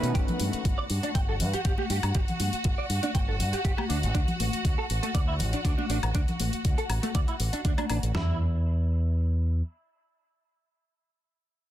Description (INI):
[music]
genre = nu-disco, nu disco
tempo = 120 BPM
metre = 4/4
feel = swing 53% on 16ths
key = unclear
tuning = A4 = 439 Hz
[part]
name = rich studio string section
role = sustained chords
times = 0.0-8.2 s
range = F#4 to F#5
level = -35 LUFS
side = equal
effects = sidechain pumping
[part]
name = fingered electric bass with an envelope filter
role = bass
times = 0.0-9.6 s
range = G1 to B2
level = -28 LUFS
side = equal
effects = tube saturation
[part]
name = electronic hi-hat and woodblock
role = drums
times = 0.0-8.1 s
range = none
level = -35 LUFS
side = left 3 dB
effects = studio reverb
[part]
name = direct-recorded clean electric guitar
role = riff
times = 0.1-8.4 s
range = A3 to G5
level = -35 LUFS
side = right 3 dB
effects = ensemble chorus, low-pass filter, dub echo
[part]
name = clean 12-bit digital drum machine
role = drums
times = 0.1-8.3 s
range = kick drum, snare drum, toms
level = -27 LUFS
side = equal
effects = overdrive, studio reverb
[part]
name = congas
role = percussion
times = 0.3-7.9 s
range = none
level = -36 LUFS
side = left 4 dB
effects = none
[sound]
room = little or no reverb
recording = dense, heavily limited modern master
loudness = -25 LUFS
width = side -13 dB against mid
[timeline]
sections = 0.0-8.1 A section; 8.1-11.7 B section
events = filter sweep on fingered electric bass 0.0-8.1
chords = 0.1 G5; 3.9 D; 8.1 N.C.